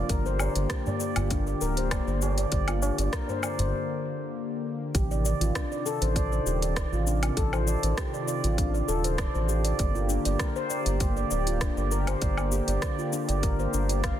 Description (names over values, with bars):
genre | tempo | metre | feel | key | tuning
organic downtempo | 99 BPM | 4/4 | straight | G minor | A4 = 440 Hz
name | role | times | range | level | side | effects
warm analog pad | sustained chords | 0.0-14.2 s | C3 to G4 | -34 LUFS | left 2 dB | chorus, sidechain pumping
handpan | arpeggios | 0.0-14.2 s | D4 to F5 | -31 LUFS | equal | tape echo
round analog bass | bass | 0.0-14.1 s | D1 to A1 | -28 LUFS | equal | sidechain pumping
deep house drum kit | drums | 0.1-14.2 s | cabasa, hi-hat, rim click, woodblock | -34 LUFS | left 2 dB | soft clipping on snare
electronic kick drum | drums | 0.1-14.2 s | none | -29 LUFS | equal | none
tabla | percussion | 0.4-3.7 s | none | -34 LUFS | right 1 dB | none
room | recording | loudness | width
light reverb, digital ambience | dense, heavily limited modern master | -25 LUFS | side -11 dB against mid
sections
0.0-4.9 A section; 4.9-14.2 B section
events
break 3.7-4.9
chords
0.1 Gm; 4.9 Adim; 9.8 Gm